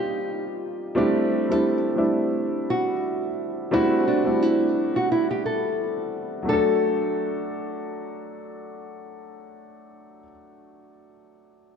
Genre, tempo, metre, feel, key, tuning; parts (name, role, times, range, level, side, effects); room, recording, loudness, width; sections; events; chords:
hip hop; 87 BPM; 4/4; swing 55% on 16ths; D mixolydian; A4 = 441 Hz
nylon-string guitar; melody; 0.0-8.5 s; D4 to A4; -25 LUFS; equal; low-pass filter, ping-pong delay
warm upright piano; accompaniment; 0.0-11.8 s; F#3 to A4; -24 LUFS; equal; low-pass filter
wet plate reverb, RT60 2.8 s; dreamy mix soaked in reverb; -21 LUFS; side -6 dB against mid
0.0-6.5 A section; 6.5-9.2 B section
0.0 F9sus4; 1.0 D9sus4; 6.5 D